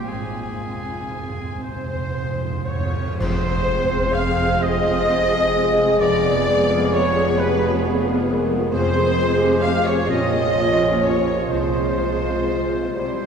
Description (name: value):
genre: classical, slow romantic movement for symphony orchestra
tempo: 37-46 BPM (dotted quarters)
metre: 6/8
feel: rubato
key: F minor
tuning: A4 = 440 Hz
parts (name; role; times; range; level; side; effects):
- rich studio violin section; melody; 0.0-13.3 s; Cb5 to Ab5; -28 LUFS; left 3 dB; none
- clear oboe; second line; 0.0-13.3 s; G4 to F5; -31 LUFS; right 1 dB; none
- warm studio violin section; second line; 0.0-13.3 s; F4 to F5; -30 LUFS; left 2 dB; none
- rich studio viola section; accompaniment; 0.0-13.3 s; G3 to Ab4; -28 LUFS; equal; none
- concert harp; arpeggios; 0.0-13.3 s; F2 to Db5; -32 LUFS; left 2 dB; none
- clear studio double bass section; bass; 0.0-13.3 s; F1 to C2; -28 LUFS; right 3 dB; none
- rich symphonic cello section; bass; 0.0-13.3 s; F2 to C3; -28 LUFS; right 2 dB; none
- cymbal swell, clash cymbals and concert bass drum; percussion; 0.1-5.1 s; none; -32 LUFS; equal; none
- timpani; percussion; 0.1-12.9 s; F2 to C3; -31 LUFS; right 2 dB; none
- concert flute; second line; 1.6-13.3 s; Cb5 to F5; -30 LUFS; equal; none
- dark trumpet section; stabs; 1.6-13.3 s; Cb5 to F5; -25 LUFS; right 3 dB; none
- warm clarinet; second line; 3.2-13.3 s; E4 to Ab4; -30 LUFS; left 3 dB; none
- mellow bassoon; accompaniment; 3.2-13.3 s; G3 to Db4; -30 LUFS; right 1 dB; none
- warm trombone section; sustained chords; 3.2-13.3 s; E3 to Db4; -29 LUFS; right 3 dB; none
- mellow French horn section; sustained chords; 4.6-13.3 s; F4 to Bb4; -26 LUFS; left 4 dB; none
room: wet cathedral reverb, RT60 5.4 s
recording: recorded in a church or concert hall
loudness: -18 LUFS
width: side -6 dB against mid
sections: 0.0-3.2 A section; 3.2-13.3 B section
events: timpani fill 0.1-3.2; band accent 3.2-4.1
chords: 0.1 Fm/Ab; 3.2 Fm; 6.0 Fdim7; 8.7 Fm; 10.1 Bbm; 11.5 Fm/C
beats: | 0.09 1.62 | 3.18 4.61 | 6.00 7.39 | 8.74 10.09 | 11.49 12.96